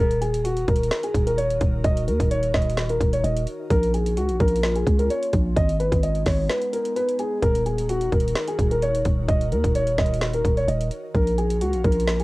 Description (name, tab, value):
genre	hip hop, trap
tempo	129 BPM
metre	4/4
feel	half-time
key	Eb minor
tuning	A4 = 440 Hz
part	dark concert grand piano	melody	0.0-12.2 s	Gb4 to Eb5	-24 LUFS	equal	cassette tape
part	glassy FM pad	sustained chords	0.4-12.2 s	Eb3 to Bb4	-34 LUFS	left 2 dB	ensemble chorus, built-in reverb, cassette tape
part	growling 808-style bass	bass	0.0-12.2 s	Eb1 to Eb2	-24 LUFS	equal	none
part	trap drum kit	drums	0.1-12.2 s	hi-hat, kick drum, snare drum	-24 LUFS	equal	cassette tape
room	little or no reverb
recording	home recording on cassette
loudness	-20 LUFS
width	side -20 dB against mid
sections	0.0-12.2 A section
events	break 6.5-7.4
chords	0.0 Ebm; 3.7 Bbm; 5.6 Abm; 7.4 Ebm; 11.1 Bbm